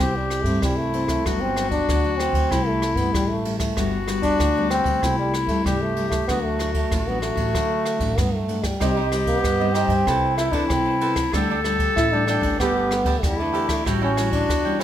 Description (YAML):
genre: samba and choro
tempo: 95 BPM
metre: 4/4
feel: straight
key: G major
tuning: A4 = 441 Hz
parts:
  - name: warm trombone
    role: melody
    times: 0.0-14.8 s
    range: G3 to E4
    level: -24 LUFS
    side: right 1 dB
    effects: none
  - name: clear clarinet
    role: second line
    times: 0.0-14.8 s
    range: E4 to A4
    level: -26 LUFS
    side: left 4 dB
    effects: none
  - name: nylon-string guitar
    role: accompaniment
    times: 0.0-14.8 s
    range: G2 to A4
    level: -28 LUFS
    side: left 2 dB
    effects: none
  - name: upright bass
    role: bass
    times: 0.0-14.8 s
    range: G1 to D3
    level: -27 LUFS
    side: right 1 dB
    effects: none
  - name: jazz brush drum kit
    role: drums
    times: 0.0-14.8 s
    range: kick drum, ride cymbal, rim click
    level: -27 LUFS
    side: equal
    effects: none
  - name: cavaquinho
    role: accompaniment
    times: 8.8-14.8 s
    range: D4 to A5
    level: -28 LUFS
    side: right 8 dB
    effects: none
room: moderate large studio reverb, RT60 1.1 s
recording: minimal, uncompressed stereo recording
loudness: -19 LUFS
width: side -11 dB against mid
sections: 0.0-14.8 A section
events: none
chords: 0.0 C; 1.3 Gmaj7; 2.5 C6; 3.8 G; 5.0 C6; 6.3 D; 8.8 Cm; 10.1 Amadd9/C; 11.3 Dsus4; 12.6 Gadd9; 13.9 A7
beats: 0.00 0.63 | 1.26 1.89 2.51 3.14 | 3.77 4.40 5.03 5.66 | 6.29 6.92 7.55 8.18 | 8.81 9.44 10.07 10.70 | 11.33 11.96 12.59 13.22 | 13.86 14.49